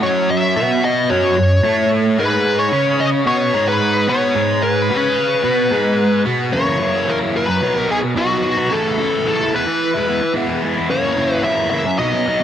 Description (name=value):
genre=rock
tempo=110 BPM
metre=4/4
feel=straight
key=unclear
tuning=A4 = 440 Hz
part: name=fuzz lead guitar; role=melody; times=0.0-12.4 s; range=F#4 to E5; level=-18 LUFS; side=left 2 dB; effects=wah, distortion, analog delay
part: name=overdriven electric guitar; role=riff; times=0.0-12.4 s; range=F#2 to E4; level=-17 LUFS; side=right 1 dB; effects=phaser, analog delay
room=moderate spring reverb, RT60 2.4 s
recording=echo-heavy mix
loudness=-14 LUFS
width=side -10 dB against mid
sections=0.0-6.5 A section; 6.5-12.4 B section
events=none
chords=0.0 F#5; 2.2 G#m; 6.5 F#7; 7.6 B; 8.7 A/C#; 9.5 E; 10.9 F#7